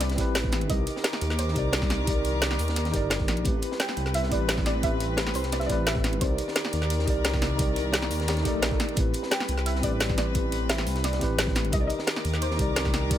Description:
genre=liquid drum and bass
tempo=174 BPM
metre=4/4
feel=straight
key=unclear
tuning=A4 = 443 Hz
part: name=soft round pluck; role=melody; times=0.0-13.1 s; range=C5 to G5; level=-34 LUFS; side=right 1 dB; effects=analog chorus, cassette tape, ping-pong delay
part: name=tine electric piano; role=accompaniment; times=0.0-13.2 s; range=C4 to Eb5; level=-31 LUFS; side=equal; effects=medium stereo tremolo, tape echo
part: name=rich chamber string section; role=sustained chords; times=0.0-13.2 s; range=Eb3 to D6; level=-35 LUFS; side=left 2 dB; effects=sidechain pumping
part: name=dark detuned saw bass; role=bass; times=0.0-13.2 s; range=G1 to Eb2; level=-29 LUFS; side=equal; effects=tube saturation
part: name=crunchy breakbeat drum kit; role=drums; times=0.0-13.2 s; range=hi-hat, snare drum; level=-36 LUFS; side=equal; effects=high-pass filter on hats, high-pass filter on snare, high-pass filter on room
part: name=garage drum kit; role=drums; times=0.0-13.2 s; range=hi-hat, snare drum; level=-29 LUFS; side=equal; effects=none
part: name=electronic kick drum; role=drums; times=0.2-13.2 s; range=none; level=-29 LUFS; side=equal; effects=none
part: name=swell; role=sound effects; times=8.4-9.0 s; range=none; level=-36 LUFS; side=equal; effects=none
room=light reverb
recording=none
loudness=-24 LUFS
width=side -11 dB against mid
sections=0.0-13.2 A section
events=swell 8.4-9.0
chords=0.0 Am9; 0.7 Cm9; 3.5 Am9; 6.2 Cm9; 9.0 Am9; 11.7 Cm9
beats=0.01 0.35 | 0.70 1.04 1.39 1.73 | 2.08 2.42 2.77 3.11 | 3.45 3.80 4.14 4.49 | 4.83 5.18 5.52 5.87 | 6.21 6.56 6.90 7.25 | 7.59 7.94 8.28 8.63 | 8.97 9.32 9.66 10.01 | 10.35 10.70 11.04 11.38 | 11.73 12.07 12.42 12.77 | 13.11

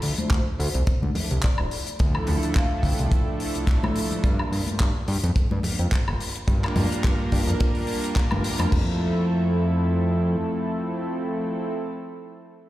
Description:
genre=nu-disco, nu disco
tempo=107 BPM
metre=4/4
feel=swing 55% on 16ths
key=F major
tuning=A4 = 440 Hz
part: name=fat analog bass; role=bass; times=0.0-10.4 s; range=D1 to G2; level=-23 LUFS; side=equal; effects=tube saturation
part: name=tight funk drum kit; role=drums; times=0.0-8.7 s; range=handclaps, hi-hat, woodblock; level=-32 LUFS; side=left 2 dB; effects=small room ambience
part: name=vibraphone with hard mallets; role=melody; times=0.2-3.3 s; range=C5 to G5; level=-36 LUFS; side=equal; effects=tape echo
part: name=warm analog pad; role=accompaniment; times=0.2-11.7 s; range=F3 to C5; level=-28 LUFS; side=right 1 dB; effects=chorus, sidechain pumping, tape echo
part: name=congas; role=percussion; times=0.2-8.7 s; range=none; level=-29 LUFS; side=left 1 dB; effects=none
part: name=tight funk drum kit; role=drums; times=0.3-8.9 s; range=crash cymbal, kick drum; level=-22 LUFS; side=equal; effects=small room ambience
room=light reverb, studio reverb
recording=played on a big sound system in a bare room, stone room reverb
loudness=-21 LUFS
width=side -15 dB against mid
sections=0.0-8.7 A section; 8.7-11.0 B section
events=drop 0.0-8.7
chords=0.0 Dmadd9; 4.2 Gm7; 8.7 Fmaj7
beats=0.31 0.87 1.43 | 2.00 2.56 3.12 3.68 | 4.24 4.80 5.36 5.92 | 6.48 7.04 7.60 8.16 | 8.72 9.28 9.85 10.41

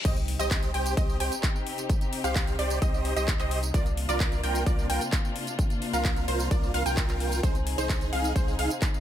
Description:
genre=EDM, festival progressive house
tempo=130 BPM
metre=4/4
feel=straight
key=C minor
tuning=A4 = 444 Hz
part: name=dark studio string section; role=sustained chords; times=0.0-9.0 s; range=C3 to Ab4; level=-35 LUFS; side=left 2 dB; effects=sidechain pumping
part: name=wide unison pluck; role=arpeggios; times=0.0-8.7 s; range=C5 to G5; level=-34 LUFS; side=right 1 dB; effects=sidechain pumping, ping-pong delay
part: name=saturated sub bass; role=bass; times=0.0-8.7 s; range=C2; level=-31 LUFS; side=equal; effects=sidechain pumping
part: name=electronic kick drum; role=drums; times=0.0-8.9 s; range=none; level=-26 LUFS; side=equal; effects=none
part: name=reverse cymbal and impact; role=sound effects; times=0.0-1.9 s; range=none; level=-39 LUFS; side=left 1 dB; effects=none
part: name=dense compressed supersaw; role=riff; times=0.1-8.7 s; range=Eb4 to G5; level=-32 LUFS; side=right 1 dB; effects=sidechain pumping, ping-pong delay
part: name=big-room dance drum kit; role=drums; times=0.1-9.0 s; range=crash cymbal, handclaps, hi-hat, tambourine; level=-34 LUFS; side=equal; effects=none
room=little or no reverb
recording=high-pass filter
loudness=-24 LUFS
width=side -11 dB against mid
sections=0.1-9.0 A section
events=drop 0.1-9.0; impact 0.1-1.9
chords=0.1 Cm; 3.7 Bb/C; 7.4 Ab/C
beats=| 0.05 0.51 0.97 1.43 | 1.90 2.36 2.82 3.28 | 3.74 4.20 4.67 5.13 | 5.59 6.05 6.51 6.97 | 7.43 7.90 8.36 8.82

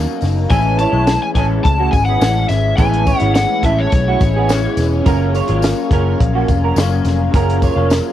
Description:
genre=indie pop, bedroom pop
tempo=105 BPM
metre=4/4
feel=straight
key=unclear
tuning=A4 = 440 Hz
part: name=electric guitar through a small old amp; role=accompaniment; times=0.0-8.1 s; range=A2 to E#4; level=-22 LUFS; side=left 10 dB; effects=ensemble chorus, warbly pitch drift, cassette tape
part: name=warbly lo-fi synth keys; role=accompaniment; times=0.0-8.1 s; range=G#3 to B4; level=-24 LUFS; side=right 9 dB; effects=chorus, phaser, cassette tape
part: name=phased string machine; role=sustained chords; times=0.0-8.1 s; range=B2 to A#4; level=-29 LUFS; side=left 1 dB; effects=ensemble chorus, phaser, cassette tape
part: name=vintage muted picked electric bass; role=bass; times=0.0-8.0 s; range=E1 to C#2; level=-17 LUFS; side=equal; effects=none
part: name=compact cocktail drum kit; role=drums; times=0.2-8.0 s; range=hi-hat, kick drum, snare drum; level=-17 LUFS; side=equal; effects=cassette tape
part: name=tambourine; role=percussion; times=0.2-8.0 s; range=none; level=-37 LUFS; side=left 11 dB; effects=none
part: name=overdriven slide guitar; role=melody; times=0.5-4.8 s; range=C#5 to A5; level=-19 LUFS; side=left 2 dB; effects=lush chorus, cassette tape, tape echo
part: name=electric guitar through a small old amp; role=second line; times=0.5-7.9 s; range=A3 to C#5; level=-23 LUFS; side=right 8 dB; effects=ensemble chorus, cassette tape, tape echo
room=light reverb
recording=home recording on cassette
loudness=-12 LUFS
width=side -12 dB against mid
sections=0.0-8.1 A section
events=none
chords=0.0 Bmaj7; 0.5 Amaj7; 5.1 F#maj7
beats=| 0.50 1.07 1.64 2.21 | 2.78 3.35 3.92 4.49 | 5.06 5.63 6.20 6.77 | 7.34 7.91

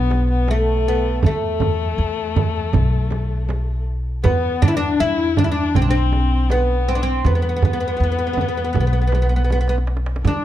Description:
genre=Persian modal ensemble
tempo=80 BPM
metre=4/4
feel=straight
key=unclear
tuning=A4 = 440 Hz
part: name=oud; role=melody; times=0.0-10.4 s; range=A3 to E4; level=-22 LUFS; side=right 1 dB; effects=none
part: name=rich kamancheh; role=second line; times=0.0-10.4 s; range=A3 to E4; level=-25 LUFS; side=left 8 dB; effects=tape echo
part: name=upright bass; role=bass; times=0.0-10.4 s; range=B1 to E2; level=-20 LUFS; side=equal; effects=none
part: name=frame drum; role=percussion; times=0.1-10.4 s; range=none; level=-24 LUFS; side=right 4 dB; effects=none
part: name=tombak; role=percussion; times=0.1-10.4 s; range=none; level=-24 LUFS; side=right 3 dB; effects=none
room=light reverb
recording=dark, warm production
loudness=-17 LUFS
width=side -12 dB against mid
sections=0.0-10.4 A section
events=drum fill 9.5-10.2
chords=none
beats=0.48 | 1.23 1.99 2.74 3.49 | 4.25 5.00 5.75 6.50 | 7.25 8.00 8.75 9.50 | 10.25

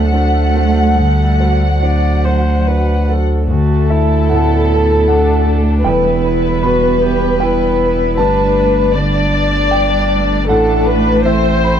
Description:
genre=neoclassical piano and strings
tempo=70-79 BPM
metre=3/4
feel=rubato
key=unclear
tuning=A4 = 440 Hz
part: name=muted studio violin section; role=melody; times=0.0-11.8 s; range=A4 to F#5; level=-16 LUFS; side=left 2 dB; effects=none
part: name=muted cello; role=second line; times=0.0-11.8 s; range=F#3 to B3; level=-22 LUFS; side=right 5 dB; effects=none
part: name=dark concert grand piano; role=accompaniment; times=0.0-11.8 s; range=D2 to B5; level=-19 LUFS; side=right 2 dB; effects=none
part: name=muted viola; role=accompaniment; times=0.0-11.8 s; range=C4 to D5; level=-23 LUFS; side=right 2 dB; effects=none
part: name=evolving wavetable pad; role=sustained chords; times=0.0-11.8 s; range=G3 to E5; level=-26 LUFS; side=left 2 dB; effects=chorus, built-in reverb
part: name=saturated sub bass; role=bass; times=0.0-11.8 s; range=E1 to D2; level=-16 LUFS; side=left 1 dB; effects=none
room=little or no reverb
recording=dark, warm production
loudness=-11 LUFS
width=side -9 dB against mid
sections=0.0-3.5 A section; 3.5-11.8 B section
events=none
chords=0.0 D7; 3.5 D; 5.8 Emadd9; 8.2 Gadd9; 10.5 Am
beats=0.12 | 0.96 1.81 2.66 | 3.48 4.29 5.07 | 5.85 6.62 7.40 | 8.18 8.94 9.71 | 10.49 11.25

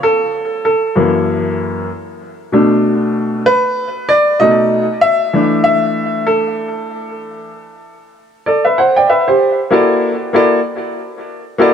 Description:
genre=hip hop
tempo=96 BPM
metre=4/4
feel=swing 59% on 16ths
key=unclear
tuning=A4 = 444 Hz
part: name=bright upright piano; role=solo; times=0.0-11.7 s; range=F#2 to G5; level=-12 LUFS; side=equal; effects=tape echo
room=moderate plate reverb, RT60 2.9 s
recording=dark, warm production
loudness=-11 LUFS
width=side -8 dB against mid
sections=0.0-7.5 A section; 7.5-11.7 A section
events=upright piano solo 0.0-7.5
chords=0.0 F#7#9; 2.5 Bm7; 4.4 B7; 5.0 E7sus4; 7.5 N.C.; 9.4 F#7alt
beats=| 0.03 0.66 1.28 1.91 | 2.53 3.16 3.78 4.41 | 5.03 5.66 6.28 6.91 | 7.53 8.16 8.78 9.41 | 10.03 10.66 11.28

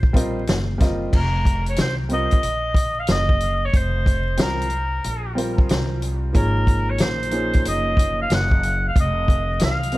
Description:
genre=hip hop, jazz-hop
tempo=92 BPM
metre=4/4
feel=swing 64% on 16ths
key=F phrygian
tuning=A4 = 439 Hz
part: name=upright bass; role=bass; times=0.0-10.0 s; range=F1 to C2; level=-24 LUFS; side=equal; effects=none
part: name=vintage drum kit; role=drums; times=0.0-10.0 s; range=crash cymbal, hi-hat, kick drum, snare drum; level=-20 LUFS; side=equal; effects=none
part: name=warm concert grand piano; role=accompaniment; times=0.1-10.0 s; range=F3 to Eb5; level=-26 LUFS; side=right 1 dB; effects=none
part: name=clear oboe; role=melody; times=1.2-10.0 s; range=Bb4 to Gb5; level=-24 LUFS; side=equal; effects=analog delay
room=studio ambience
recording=vinyl crackle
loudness=-18 LUFS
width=side -18 dB against mid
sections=0.0-1.1 A section; 1.1-10.0 B section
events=none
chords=0.0 F9sus4; 6.3 Ab9sus4; 9.0 F7(no3)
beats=0.48 | 1.13 1.78 2.44 3.09 | 3.74 4.39 5.05 5.70 | 6.35 7.00 7.65 8.31 | 8.96 9.61

